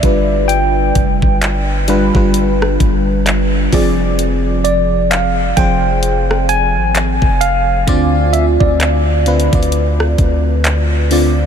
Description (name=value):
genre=contemporary R&B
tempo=65 BPM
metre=4/4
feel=swing 58% on 16ths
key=unclear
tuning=A4 = 442 Hz
part: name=tine electric piano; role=melody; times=0.0-10.4 s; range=D5 to Ab5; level=-18 LUFS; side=equal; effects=medium stereo tremolo, diffuse ambient delay
part: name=FM electric piano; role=accompaniment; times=0.0-11.5 s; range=D3 to D5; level=-16 LUFS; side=equal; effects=chorus, phaser
part: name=long sustained 808-style bass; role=bass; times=0.0-11.5 s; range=F1 to D2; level=-16 LUFS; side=equal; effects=none
part: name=trap drum kit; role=drums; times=0.0-11.4 s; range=handclaps, hi-hat, kick drum, rim click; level=-18 LUFS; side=equal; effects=none
room=moderate huge ambient reverb, RT60 7.2 s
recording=dreamy mix soaked in reverb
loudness=-11 LUFS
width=side -8 dB against mid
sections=0.0-11.5 A section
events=none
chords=0.0 G7; 3.7 Fm6; 7.9 Dm7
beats=| 0.49 1.42 2.34 3.26 | 4.18 5.11 6.03 6.95 | 7.88 8.80 9.72 10.65